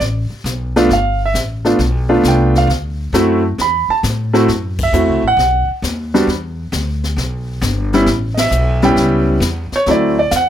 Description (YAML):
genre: jazz piano trio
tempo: 134 BPM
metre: 4/4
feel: swing 68% on 8ths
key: D mixolydian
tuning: A4 = 440 Hz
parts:
  - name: upright bass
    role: bass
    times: 0.0-10.5 s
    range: G1 to A2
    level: -18 LUFS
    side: equal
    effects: none
  - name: jazz brush drum kit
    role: drums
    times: 0.0-10.5 s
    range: brushed snare drum, crash cymbal, hi-hat, kick drum, ride cymbal, snare drum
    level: -23 LUFS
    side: left 3 dB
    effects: none
  - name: warm concert grand piano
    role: melody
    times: 0.8-10.5 s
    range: F#3 to B5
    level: -13 LUFS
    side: right 1 dB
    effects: none
room: moderate club reverb, RT60 0.6 s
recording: none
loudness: -13 LUFS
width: side -10 dB against mid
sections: 0.0-10.5 A section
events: band accent 4.7, 8.3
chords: 0.0 G9; 2.7 D9; 4.5 F#m7b5; 5.4 B; 6.3 Em7; 8.1 A9; 9.9 D9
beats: 0.00 0.45 | 0.90 1.34 1.79 2.24 | 2.69 3.13 3.58 4.03 | 4.48 4.93 5.38 5.83 | 6.28 6.72 7.17 7.62 | 8.07 8.52 8.97 9.42 | 9.87 10.32